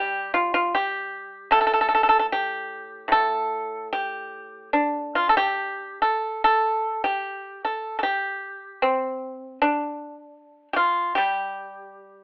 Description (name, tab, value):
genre	chinese traditional, Chinese solo plucked strings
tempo	76 BPM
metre	4/4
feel	rubato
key	unclear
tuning	A4 = 440 Hz
part	pipa	solo	0.0-12.2 s	A2 to A4	-21 LUFS	equal	none
room	moderate studio reverb, RT60 0.7 s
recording	band playing live in one room, telephone sound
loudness	-21 LUFS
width	side -24 dB against mid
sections	0.0-6.4 A section; 6.4-12.2 B section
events	none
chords	none